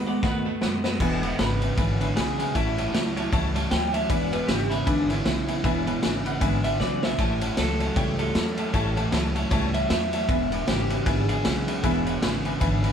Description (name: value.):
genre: rockabilly.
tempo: 155 BPM.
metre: 4/4.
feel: swing 59% on 8ths.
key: E mixolydian.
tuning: A4 = 440 Hz.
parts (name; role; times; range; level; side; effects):
electric guitar through a small old amp; melody; 0.0-12.4 s; D4 to G5; -30 LUFS; equal; none.
picked steel-string acoustic guitar; accompaniment; 0.0-12.9 s; E2 to F#4; -31 LUFS; left 1 dB; none.
electric guitar at the edge of break-up; riff; 0.0-12.9 s; E2 to A3; -30 LUFS; right 4 dB; none.
upright bass; bass; 0.0-12.9 s; E1 to F#2; -30 LUFS; equal; none.
honky-tonk upright piano; accompaniment; 0.1-12.9 s; B4 to B5; -33 LUFS; left 4 dB; none.
vintage drum kit; drums; 0.2-12.9 s; crash cymbal, kick drum, ride cymbal, snare drum; -27 LUFS; equal; none.
room: light reverb.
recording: band playing live in one room.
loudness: -22 LUFS.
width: side -8 dB against mid.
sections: 0.0-1.0 A section; 1.0-12.9 B section.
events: drum fill 0.2-1.0, 6.8-7.2; clean electric guitar solo 1.0-12.9.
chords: 0.0 B7; 1.0 E7; 2.5 A7; 4.1 E7; 7.2 A7; 10.3 E7.